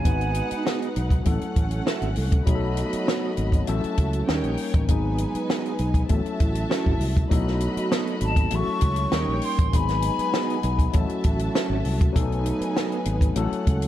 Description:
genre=lush 1970s-style soul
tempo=99 BPM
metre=4/4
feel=straight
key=unclear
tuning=A4 = 441 Hz
part: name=breathy mellow jazz flute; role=melody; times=0.0-0.8, 8.2-11.0 s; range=G#5 to C#6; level=-28 LUFS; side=left 3 dB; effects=none
part: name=warm studio string section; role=second line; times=0.0-13.9 s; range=C#4 to B5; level=-32 LUFS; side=equal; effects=none
part: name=overdriven tine electric piano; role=accompaniment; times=0.0-13.9 s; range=F#3 to B4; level=-29 LUFS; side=moving between left 6 dB and right 1 dB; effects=auto-pan
part: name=fingered electric bass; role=bass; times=0.1-13.9 s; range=G#1 to D#2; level=-26 LUFS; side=equal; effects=none
part: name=compact cocktail drum kit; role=drums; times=0.1-13.9 s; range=hi-hat, kick drum, snare drum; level=-24 LUFS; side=equal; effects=none
part: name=electric guitar through a small old amp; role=riff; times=0.7-13.0 s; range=B3 to E5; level=-31 LUFS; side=right 6 dB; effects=none
part: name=vibraphone with soft mallets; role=texture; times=2.5-11.6 s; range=E4 to B5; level=-37 LUFS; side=equal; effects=none
room=small room reverb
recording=dark, warm production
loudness=-21 LUFS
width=side -12 dB against mid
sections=0.0-13.9 A section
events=none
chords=0.1 G#m7; 1.3 A6; 2.5 B7; 3.7 A6; 4.3 D#7; 4.9 G#m7; 6.1 A6; 7.3 B7; 8.5 A6; 9.1 D#7; 9.7 G#m7; 10.9 A6; 12.2 B7; 13.4 A6

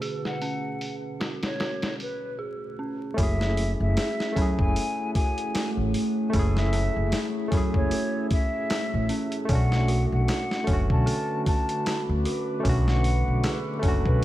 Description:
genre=trip hop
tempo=76 BPM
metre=4/4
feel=swing 57% on 16ths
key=F# minor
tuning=A4 = 439 Hz
part: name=barky tine electric piano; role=accompaniment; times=0.0-14.2 s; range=B2 to G#4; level=-30 LUFS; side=left 1 dB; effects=overdrive, tremolo, vintage 12-bit sampler grit, tape echo
part: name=deep dark ambient pad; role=sustained chords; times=0.0-14.2 s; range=D3 to D6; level=-34 LUFS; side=right 2 dB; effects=chorus, built-in reverb
part: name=dark detuned synth bell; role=arpeggios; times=0.0-14.2 s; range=C#4 to A4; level=-36 LUFS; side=right 3 dB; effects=chorus, vintage 12-bit sampler grit, tape echo
part: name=dusty soul sampler-style drum kit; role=drums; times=0.0-14.2 s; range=hi-hat, kick drum, snare drum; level=-28 LUFS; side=equal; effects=low-pass filter on hats, studio reverb, low-pass filter on snare, low-pass filter on kick
part: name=mellow hollow jazz flute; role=melody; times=0.3-14.2 s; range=B4 to A5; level=-33 LUFS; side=left 1 dB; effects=tape echo
part: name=upright bass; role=bass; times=3.2-14.2 s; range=F#1 to F#2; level=-25 LUFS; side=equal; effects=none
room=light reverb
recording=vinyl crackle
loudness=-23 LUFS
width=side -14 dB against mid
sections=0.0-3.2 A section; 3.2-14.2 B section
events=filter sweep on ambient pad 0.0-3.2; break 2.4-3.2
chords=0.0 Bm7; 3.2 F#m7; 9.5 Bm7

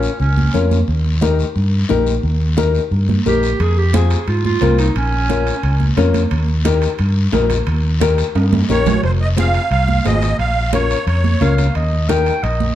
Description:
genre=latin, cumbia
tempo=177 BPM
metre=4/4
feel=straight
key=unclear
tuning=A4 = 440 Hz
part: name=bright clarinet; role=second line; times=0.0-0.7, 3.3-5.9, 11.4-12.8 s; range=Db4 to G5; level=-22 LUFS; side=right 3 dB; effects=none
part: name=flamenco guitar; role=accompaniment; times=0.0-12.3 s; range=C4 to Bb4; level=-20 LUFS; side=left 7 dB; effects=none
part: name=fingered electric bass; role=bass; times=0.0-12.7 s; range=F1 to Ab2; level=-16 LUFS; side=equal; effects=none
part: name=guiro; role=percussion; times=0.0-12.8 s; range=none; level=-32 LUFS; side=left 6 dB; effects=none
part: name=congas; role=percussion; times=0.2-12.8 s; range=none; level=-23 LUFS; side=right 6 dB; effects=none
part: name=timbales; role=percussion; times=3.6-12.6 s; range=none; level=-28 LUFS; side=right 5 dB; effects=none
part: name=musette accordion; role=melody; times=8.7-11.6 s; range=C5 to F5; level=-20 LUFS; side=right 2 dB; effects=none
room=moderate large studio reverb, RT60 1.4 s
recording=dark, warm production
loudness=-14 LUFS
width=side -12 dB against mid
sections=0.0-9.0 A section; 9.0-12.8 B section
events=clarinet solo 0.0-9.0; drum fill 8.4-9.0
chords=0.0 Bbm; 0.9 Eb; 3.6 Fm; 5.0 Bbm; 6.3 Eb; 9.0 Fm; 10.4 Bbm; 11.8 Eb

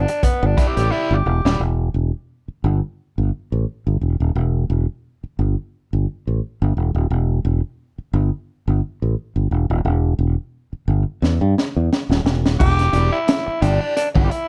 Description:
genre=funk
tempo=87 BPM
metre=4/4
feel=swing 56% on 16ths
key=E minor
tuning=A4 = 440 Hz
part: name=raspy tenor saxophone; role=melody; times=0.0-1.6, 12.6-14.5 s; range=B3 to G4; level=-24 LUFS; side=equal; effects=none
part: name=fingered electric bass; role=bass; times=0.0-14.3 s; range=D#1 to G2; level=-20 LUFS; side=equal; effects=none
part: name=crunchy overdriven guitar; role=accompaniment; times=0.1-1.6, 12.9-14.3 s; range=E4 to E5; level=-29 LUFS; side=equal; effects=wah
part: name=crunchy breakbeat drum kit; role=drums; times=0.1-1.6, 11.2-14.5 s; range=crash cymbal, hi-hat, kick drum, snare drum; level=-22 LUFS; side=equal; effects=none
room=light reverb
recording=dark, warm production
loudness=-20 LUFS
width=mono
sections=0.0-1.6 A section; 1.6-12.6 B section; 12.6-14.5 C section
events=tenor saxophone solo 0.0-1.6; drum fill 0.9-1.6, 11.2-12.6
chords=0.0 Em7; 1.6 Em; 12.6 Em7

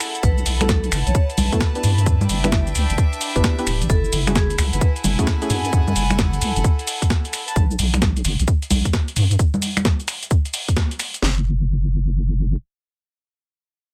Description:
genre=UK garage, two-step garage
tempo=131 BPM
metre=4/4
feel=swing 64% on 16ths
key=unclear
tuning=A4 = 440 Hz
part: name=breakbeat sampler-style drum kit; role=drums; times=0.0-11.2 s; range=congas, finger snaps, hi-hat, shaker, snare drum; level=-25 LUFS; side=equal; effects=none
part: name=bright chamber string section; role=texture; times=0.0-7.6 s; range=D4 to A5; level=-31 LUFS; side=equal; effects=sidechain pumping
part: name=vibraphone with medium mallets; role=melody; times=0.2-4.8 s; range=G#4 to E5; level=-33 LUFS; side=equal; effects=delay
part: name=deep soft wobble bass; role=bass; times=0.2-12.6 s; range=D1 to G2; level=-22 LUFS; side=equal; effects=chorus, sidechain pumping
part: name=garage drum kit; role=drums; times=0.2-11.4 s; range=kick drum, snare drum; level=-21 LUFS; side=equal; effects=none
part: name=deep mellow chord stab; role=stabs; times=0.6-5.6 s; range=A3 to B4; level=-29 LUFS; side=equal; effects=chorus, delay
room=light reverb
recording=dense, heavily limited modern master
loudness=-20 LUFS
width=mono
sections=0.0-11.2 A section; 11.2-13.9 B section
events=drop 0.0-11.2; band accent 10.8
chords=0.0 B7sus4; 1.8 G6; 3.9 F#m9; 7.3 Bsus4; 9.2 N.C.

